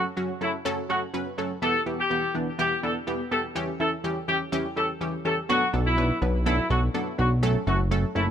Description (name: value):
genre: dance-pop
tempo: 124 BPM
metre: 4/4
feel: straight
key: B minor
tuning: A4 = 439 Hz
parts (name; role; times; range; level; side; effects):
- mellow horn section; melody; 0.0-8.3 s; E4 to A4; -27 LUFS; left 1 dB; digital delay
- punchy chord stab; accompaniment; 0.0-8.3 s; E3 to B4; -28 LUFS; equal; chorus
- chorused synth bass; bass; 5.7-8.3 s; F#1 to B1; -24 LUFS; equal; none
room: light reverb, studio ambience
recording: none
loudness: -23 LUFS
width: side -9 dB against mid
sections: 0.0-5.5 A section; 5.5-8.3 B section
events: build-up 0.0-5.5; drop 5.5-8.3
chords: 0.0 F#m; 1.6 Em; 3.6 C#dim; 5.5 Bm7; 7.4 F#m